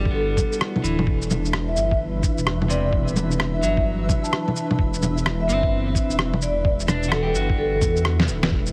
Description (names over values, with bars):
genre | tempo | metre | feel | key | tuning
future garage | 129 BPM | 4/4 | swing 64% on 16ths | unclear | A4 = 440 Hz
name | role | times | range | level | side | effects
electric guitar at the edge of break-up | accompaniment | 0.0-8.2 s | C3 to G4 | -33 LUFS | equal | sidechain pumping, tape echo
warbly tape-like pad | sustained chords | 0.0-8.7 s | E3 to F#5 | -32 LUFS | equal | chorus, built-in reverb, vintage 12-bit sampler grit, sidechain pumping
dark detuned saw bass | bass | 0.0-8.7 s | D1 to E2 | -27 LUFS | equal | sidechain pumping
vibraphone with soft mallets | melody | 0.1-8.0 s | A4 to A5 | -29 LUFS | equal | tape echo
electronic kick drum | drums | 0.1-8.6 s | none | -25 LUFS | equal | none
electronic bongos, shaker, rim click and snare drum | drums | 0.4-8.7 s | none | -27 LUFS | equal | none
flickering grainy texture | texture | 1.5-8.5 s | E4 to E5 | -39 LUFS | equal | built-in reverb
room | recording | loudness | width
light reverb | heavily compressed radio sound, vinyl crackle | -22 LUFS | mono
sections
0.0-8.5 A section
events
kick drops out 8.0-8.5; drum fill 8.2-8.5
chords
0.0 Em9; 1.1 Cmaj7/E